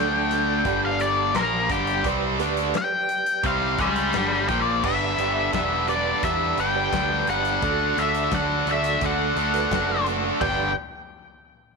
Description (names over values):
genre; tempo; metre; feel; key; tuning
classic rock; 86 BPM; 4/4; straight; G major; A4 = 437 Hz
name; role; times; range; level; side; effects
octave-fuzz lead guitar; melody; 0.0-10.7 s; G4 to G5; -24 LUFS; left 4 dB; wah, distortion, tape echo
mellow reed electric piano; accompaniment; 0.0-10.7 s; D4 to D5; -31 LUFS; right 15 dB; fast tremolo
overdriven electric guitar; riff; 0.0-10.7 s; G2 to B4; -28 LUFS; left 12 dB; none
tight distorted guitar; riff; 0.0-10.7 s; G2 to D4; -27 LUFS; right 15 dB; distortion
growling picked electric bass; bass; 0.0-10.7 s; E1 to E2; -30 LUFS; right 2 dB; overdrive
big rock drum kit; drums; 0.3-10.6 s; crash cymbal, hi-hat, kick drum, snare drum, toms; -33 LUFS; left 4 dB; none
room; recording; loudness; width
light reverb, studio ambience; 1960s-style stereo with parts hard left and right; -20 LUFS; side -4 dB against mid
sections
0.0-4.8 A section; 4.8-10.4 B section; 10.4-11.8 C section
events
lead electric guitar solo 0.0-4.8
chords
0.0 D5; 0.7 G; 7.6 D; 10.4 G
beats
0.66 1.36 | 2.05 2.75 3.45 4.14 | 4.84 5.54 6.24 6.93 | 7.63 8.33 9.02 9.72 | 10.42